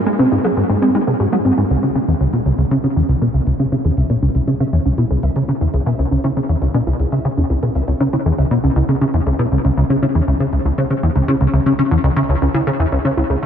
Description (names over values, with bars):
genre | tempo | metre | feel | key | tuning
ambient, sequencer-driven space music | 119 BPM | 4/4 | straight | C# minor | A4 = 438 Hz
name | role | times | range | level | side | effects
warbly dusty pluck | arpeggios | 0.1-13.5 s | Ab3 to E5 | -21 LUFS | right 1 dB | chorus, auto-pan, tape echo
plucky analog bass | riff | 0.1-13.5 s | C#2 to Ab3 | -15 LUFS | equal | lush chorus, tape echo
room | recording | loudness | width
moderate huge ambient reverb, RT60 7.3 s | none | -14 LUFS | side -8 dB against mid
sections
0.0-1.7 A section; 1.7-13.5 B section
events
none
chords
0.0 Ab7; 1.7 C#m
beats
0.19 0.70 1.20 | 1.70 2.21 2.71 3.22 | 3.72 4.22 4.73 5.23 | 5.74 6.24 6.75 7.25 | 7.75 8.26 8.76 9.27 | 9.77 10.28 10.78 11.28 | 11.79 12.29 12.80 13.30